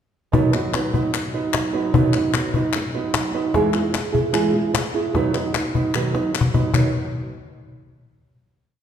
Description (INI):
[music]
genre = flamenco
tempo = 150 BPM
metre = 4/4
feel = straight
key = B major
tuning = A4 = 445 Hz
[part]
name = nylon-string guitar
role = accompaniment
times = 0.3-6.9 s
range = B2 to B4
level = -20 LUFS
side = right 3 dB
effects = none
[part]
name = cajon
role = percussion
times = 0.3-6.8 s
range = none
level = -23 LUFS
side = left 4 dB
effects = none
[part]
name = palmas hand claps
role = percussion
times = 0.5-6.8 s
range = none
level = -28 LUFS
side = left 7 dB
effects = none
[sound]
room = wet recital hall reverb, RT60 1.8 s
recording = recorded in a church or concert hall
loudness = -18 LUFS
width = side -9 dB against mid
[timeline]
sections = 0.3-6.7 groove; 6.7-8.3 final chord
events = drum fill 6.1-6.7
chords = 0.3 B; 3.5 E; 5.1 B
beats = | 0.34 0.74 1.14 1.54 | 1.94 2.34 2.74 3.14 | 3.54 3.94 4.34 4.74 | 5.14 5.54 5.94 6.34 | 6.74